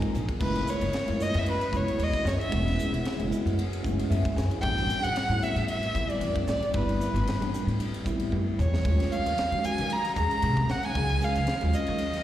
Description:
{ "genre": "electric jazz fusion", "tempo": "114 BPM", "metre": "4/4", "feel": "swing 54% on 16ths", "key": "unclear", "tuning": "A4 = 440 Hz", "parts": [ { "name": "warm violin", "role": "melody", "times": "0.0-12.2 s", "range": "Bb4 to Bb5", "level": "-30 LUFS", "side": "equal", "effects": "slapback echo" }, { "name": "mellow tine electric piano", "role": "accompaniment", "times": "0.0-12.0 s", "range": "F3 to Ab5", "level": "-32 LUFS", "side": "equal", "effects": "medium stereo tremolo, slapback echo" }, { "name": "shimmering ambient pad", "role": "sustained chords", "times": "0.0-12.2 s", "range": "Eb3 to F5", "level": "-37 LUFS", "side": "equal", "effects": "chorus, built-in reverb" }, { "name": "crisp fusion drum kit", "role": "drums", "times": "0.0-12.2 s", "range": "crash cymbal, hi-hat, kick drum, ride cymbal, snare drum, toms", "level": "-34 LUFS", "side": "equal", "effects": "none" }, { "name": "upright bass", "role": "bass", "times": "0.1-12.2 s", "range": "Fb1 to Eb3", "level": "-29 LUFS", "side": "equal", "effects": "none" } ], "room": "light reverb", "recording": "live gig heard through the venue's PA, recital hall reverb", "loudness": "-25 LUFS", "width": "side -12 dB against mid", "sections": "0.4-12.2 A section", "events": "tine electric piano fill 0.0-0.4, 3.8-4.6; drum fill 8.3-8.8", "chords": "0.4 Gbm11; 4.6 Am11; 8.8 Ebm11", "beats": "| 0.41 0.94 1.46 1.99 | 2.52 3.05 3.58 4.10 | 4.63 5.16 5.68 6.21 | 6.74 7.27 7.79 8.32 | 8.85 9.37 9.90 10.43 | 10.95 11.48 12.00" }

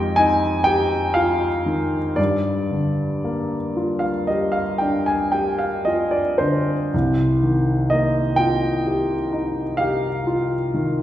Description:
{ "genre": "classical, impressionist solo piano", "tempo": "37-44 BPM (dotted quarters)", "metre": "9/8", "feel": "rubato", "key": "C minor", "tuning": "A4 = 440 Hz", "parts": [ { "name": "clear grand piano", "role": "solo", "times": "0.0-11.0 s", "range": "C2 to Ab5", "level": "-18 LUFS", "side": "equal", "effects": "none" } ], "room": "wet recital hall reverb, RT60 1.8 s", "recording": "heard from further back in the room", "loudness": "-18 LUFS", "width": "side -12 dB against mid", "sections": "0.0-11.0 A section", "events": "none", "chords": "0.0 Fm9; 2.2 Gm7; 6.9 Cm7", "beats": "0.67 | 2.18 3.77 5.34 | 6.93 8.40 9.80" }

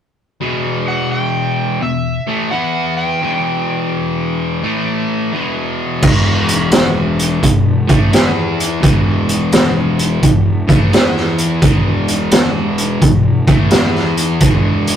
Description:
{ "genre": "blues rock power trio and southern rock", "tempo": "86 BPM", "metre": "4/4", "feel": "swing 66% on 8ths", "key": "E minor", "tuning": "A4 = 441 Hz", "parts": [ { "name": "distorted electric guitar", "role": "riff", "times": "0.4-15.0 s", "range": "E2 to E4", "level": "-17 LUFS", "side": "left 2 dB", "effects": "distortion" }, { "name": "overdriven slide guitar", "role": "melody", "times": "0.9-5.0 s", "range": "E5 to G5", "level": "-21 LUFS", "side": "right 1 dB", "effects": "none" }, { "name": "fuzz fingered electric bass", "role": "bass", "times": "6.0-15.0 s", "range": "E1 to E2", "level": "-20 LUFS", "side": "equal", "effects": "overdrive" }, { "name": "raw garage drum kit", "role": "drums", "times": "6.0-15.0 s", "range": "crash cymbal, hi-hat, kick drum, snare drum", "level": "-12 LUFS", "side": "right 1 dB", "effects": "none" } ], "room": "light reverb", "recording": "rough rehearsal-room recording, warm saturation", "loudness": "-12 LUFS", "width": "side -9 dB against mid", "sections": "0.4-6.0 A section; 6.0-15.0 B section", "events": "none", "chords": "0.4 Em; 4.6 A5; 5.3 E5", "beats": "| 0.42 1.12 1.82 2.53 | 3.23 3.93 4.64 5.34 | 6.04 6.74 7.44 8.14 | 8.84 9.54 10.23 10.93 | 11.63 12.33 13.03 13.72 | 14.42" }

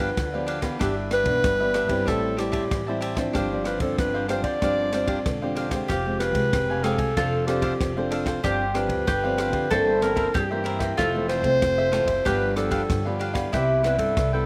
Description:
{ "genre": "samba and choro", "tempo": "94 BPM", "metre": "4/4", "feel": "straight", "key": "unclear", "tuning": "A4 = 439 Hz", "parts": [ { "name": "clear clarinet", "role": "melody", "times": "0.0-14.5 s", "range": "G4 to D5", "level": "-28 LUFS", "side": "equal", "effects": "slapback echo" }, { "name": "cavaquinho", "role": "accompaniment", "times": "0.0-14.5 s", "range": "D4 to A5", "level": "-34 LUFS", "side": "equal", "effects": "none" }, { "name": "nylon-string guitar", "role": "accompaniment", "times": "0.0-14.5 s", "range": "F2 to A4", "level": "-31 LUFS", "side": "equal", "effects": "slapback echo" }, { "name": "upright bass", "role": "bass", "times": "0.0-14.5 s", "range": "E1 to G2", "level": "-33 LUFS", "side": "equal", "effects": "none" }, { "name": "open jazz drum kit", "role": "drums", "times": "0.0-14.3 s", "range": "kick drum, ride cymbal, rim click", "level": "-33 LUFS", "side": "equal", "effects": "none" }, { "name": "mandolin", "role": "second line", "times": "5.9-14.5 s", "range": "E4 to A4", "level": "-30 LUFS", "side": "equal", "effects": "none" } ], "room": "little or no reverb", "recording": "recorded outdoors, with no room sound", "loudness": "-24 LUFS", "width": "mono", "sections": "0.0-14.5 A section", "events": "none", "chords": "0.0 G7; 0.8 Em7/G; 2.1 Am7; 3.4 G7sus4; 5.9 Fmadd9; 7.2 Dm7/F; 8.4 G7sus4; 9.7 C7/G; 11.0 Fmaj7; 12.3 G7; 13.5 Cmaj7", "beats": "0.17 | 0.81 1.44 2.08 2.72 | 3.35 3.99 4.62 5.26 | 5.90 6.53 7.17 7.81 | 8.44 9.08 9.71 10.35 | 10.99 11.62 12.26 12.90 | 13.53 14.17" }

